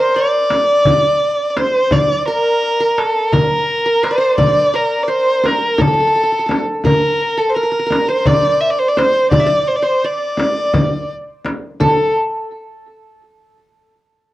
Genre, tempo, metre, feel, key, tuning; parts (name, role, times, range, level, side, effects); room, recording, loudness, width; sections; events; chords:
Turkish makam ensemble; 170 BPM (eighths); 7/8; straight; A4 = 442 Hz
warm violin; melody; 0.0-12.1 s; A4 to E5; -14 LUFS; equal; plate reverb
qanun; second line; 0.0-12.1 s; A4 to E5; -21 LUFS; right 1 dB; tape echo
darbuka; percussion; 0.2-12.1 s; -19 LUFS; left 1 dB
frame drum; percussion; 0.5-12.1 s; -20 LUFS; left 1 dB
wet small room reverb, RT60 0.5 s; worn, warbling old tape, cassette tape, warbly pitch drift; -13 LUFS; side -16 dB against mid
0.0-11.8 A section; 11.8-14.3 B section